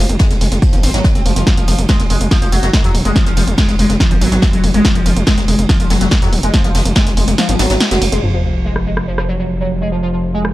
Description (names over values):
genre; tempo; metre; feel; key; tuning
driving peak-time techno; 142 BPM; 4/4; straight; F phrygian; A4 = 443 Hz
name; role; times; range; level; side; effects
gritty driven synth bass; bass; 0.0-10.5 s; Eb1 to F2; -16 LUFS; equal; sidechain pumping
punchy analog drum machine; drums; 0.1-10.5 s; crash cymbal, hi-hat, rim click, snare drum; -19 LUFS; equal; sidechain pumping on hats, low-pass filter on hats, low-pass filter on snare, sidechain pumping on cymbals, low-pass filter on cymbals, low-pass filter on room
overdriven synth lead; riff; 0.2-10.4 s; F3 to C4; -19 LUFS; equal; distortion, phaser, tube saturation, ensemble chorus, sidechain pumping, analog delay
electronic kick drum; drums; 0.2-7.0 s; none; -13 LUFS; equal; overdrive
jazz brush drum kit; drums; 0.2-8.2 s; ride cymbal, snare drum; -26 LUFS; right 2 dB; sidechain pumping on cymbals, high-pass filter on cymbals, high-pass filter on snare, high-pass filter on room
sub drop; sound effects; 8.2-9.9 s; none; -21 LUFS; equal; none
room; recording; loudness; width
digital ambience; dry, gritty hardware recording, transformer saturation; -11 LUFS; side -16 dB against mid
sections
0.0-8.2 A section; 8.2-10.5 B section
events
kick drops out 7.4-8.2; impact 8.2-9.9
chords
0.0 F5